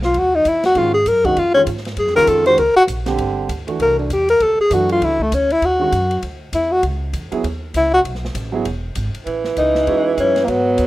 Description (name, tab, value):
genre	jazz, small-group swing and bop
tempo	198 BPM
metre	4/4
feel	swing 60% on 8ths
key	unclear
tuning	A4 = 440 Hz
part	breathy tenor saxophone	melody	0.0-10.9 s	A3 to B#4	-14 LUFS	left 1 dB	none
part	upright bass	bass	0.0-10.9 s	E1 to G#2	-24 LUFS	equal	none
part	swinging big-band drum kit	drums	0.0-10.9 s	hi-hat, kick drum, ride cymbal, snare drum	-32 LUFS	equal	none
part	warm grand piano	accompaniment	0.8-10.3 s	D3 to G#4	-22 LUFS	right 5 dB	none
part	bright tenor saxophone	second line	9.3-10.9 s	E3 to F#3	-18 LUFS	right 4 dB	none
room	studio ambience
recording	rough home demo mix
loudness	-14 LUFS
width	side -16 dB against mid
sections	0.0-9.3 A section; 9.3-10.9 B section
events	tenor saxophone solo 0.0-9.3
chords	0.0 Asus2 (rootless); 0.8 G#5; 1.4 C#add9; 2.0 F#maj9; 3.2 G5; 3.8 Cadd9; 4.4 Dmaj7; 5.6 D#madd11; 6.2 Dsus2; 6.8 C#madd9; 8.0 B5; 8.7 E; 9.3 A6